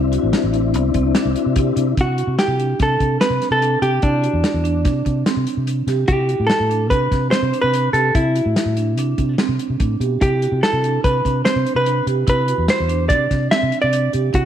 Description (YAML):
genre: progressive instrumental, band music in an uneven meter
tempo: 146 BPM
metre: 5/4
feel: straight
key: C lydian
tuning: A4 = 440 Hz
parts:
  - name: mellow tonewheel organ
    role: accompaniment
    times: 0.0-2.0 s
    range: C4 to E4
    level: -20 LUFS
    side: left 12 dB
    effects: chorus vibrato, fast rotary speaker
  - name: marimba with medium mallets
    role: arpeggios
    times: 0.0-14.4 s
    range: B3 to G4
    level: -24 LUFS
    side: right 9 dB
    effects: none
  - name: fingered electric bass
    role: bass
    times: 0.0-14.5 s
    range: A1 to C3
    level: -20 LUFS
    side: equal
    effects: none
  - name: warm soul drum kit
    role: drums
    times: 0.1-14.4 s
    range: hi-hat, kick drum, snare drum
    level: -21 LUFS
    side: equal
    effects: none
  - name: hollow-body jazz guitar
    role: melody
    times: 2.0-14.5 s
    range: D4 to E5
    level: -19 LUFS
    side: equal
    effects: none
room: moderate echo chamber reverb, RT60 1.2 s, small room ambience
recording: 1960s-style stereo with parts hard left and right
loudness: -16 LUFS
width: side -9 dB against mid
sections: 0.0-2.0 A section; 2.0-14.5 B section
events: none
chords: 0.0 Cadd9; 2.0 Dsus4/C; 4.0 N.C.; 6.1 Cadd9; 10.2 N.C.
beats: 0.33 0.74 1.16 1.57 | 1.98 2.39 2.80 3.21 3.62 | 4.04 4.45 4.86 5.27 5.68 | 6.10 6.51 6.92 7.33 7.75 | 8.16 8.57 8.98 9.39 9.81 | 10.22 10.63 11.04 11.46 11.87 | 12.28 12.69 13.11 13.52 13.93 | 14.34